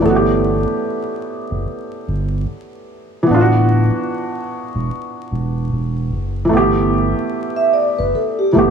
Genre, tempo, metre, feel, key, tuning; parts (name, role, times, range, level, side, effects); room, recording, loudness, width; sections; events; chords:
hip hop; 74 BPM; 4/4; swing 60% on 16ths; A4 = 441 Hz
kalimba; melody; 0.0-1.6 s; A4; -24 LUFS; equal; analog delay
felt-muted upright piano; accompaniment; 0.0-8.7 s; E3 to G4; -17 LUFS; right 1 dB; cassette tape
saturated sub bass; bass; 0.0-8.7 s; D1 to G1; -18 LUFS; equal
vibraphone with soft mallets; second line; 7.6-8.7 s; G4 to E5; -15 LUFS; right 1 dB; analog delay
light reverb, studio reverb; vinyl crackle; -15 LUFS; side -6 dB against mid
0.0-8.7 A section
0.0 G69; 3.3 D69; 6.5 G69